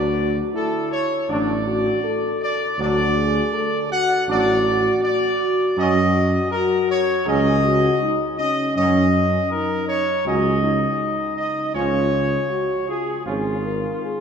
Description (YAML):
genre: classical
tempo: 80 BPM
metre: 4/4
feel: straight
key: unclear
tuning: A4 = 440 Hz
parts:
  - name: mellow trumpet section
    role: melody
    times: 0.0-14.2 s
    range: E#4 to F#5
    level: -22 LUFS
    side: equal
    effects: none
  - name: clear trombone section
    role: sustained chords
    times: 0.0-13.5 s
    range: E#3 to D4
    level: -31 LUFS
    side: right 3 dB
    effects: none
  - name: mellow French horn section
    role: sustained chords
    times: 0.0-14.2 s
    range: C#4 to A#4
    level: -23 LUFS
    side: left 2 dB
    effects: none
  - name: mellow tuba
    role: bass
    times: 0.0-13.9 s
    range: G#1 to F#2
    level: -23 LUFS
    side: right 2 dB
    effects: none
room: wet church reverb, RT60 3.2 s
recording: dark, warm production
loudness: -18 LUFS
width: side -7 dB against mid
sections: 0.0-14.2 A section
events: none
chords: 0.0 D; 5.8 F#5; 11.7 C#